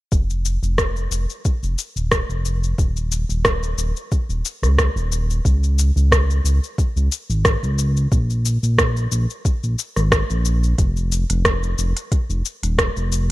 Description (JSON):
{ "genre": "organic downtempo", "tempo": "90 BPM", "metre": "4/4", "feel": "swing 54% on 16ths", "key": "unclear", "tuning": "A4 = 439 Hz", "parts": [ { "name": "smooth gliding synth bass", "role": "bass", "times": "0.1-13.3 s", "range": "Eb1 to Db2", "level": "-19 LUFS", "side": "equal", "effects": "sidechain pumping" }, { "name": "electronic kick drum", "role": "drums", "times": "0.1-12.9 s", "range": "none", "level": "-19 LUFS", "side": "equal", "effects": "none" }, { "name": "organic electronic drum kit", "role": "drums", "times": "0.1-13.3 s", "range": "cabasa, hi-hat, rim click", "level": "-22 LUFS", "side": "equal", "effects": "none" } ], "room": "little or no reverb", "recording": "none", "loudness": "-17 LUFS", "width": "side -18 dB against mid", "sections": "0.1-10.8 A section; 10.8-13.3 B section", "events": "filter sweep on analog synth bass 0.1-10.8", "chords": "none" }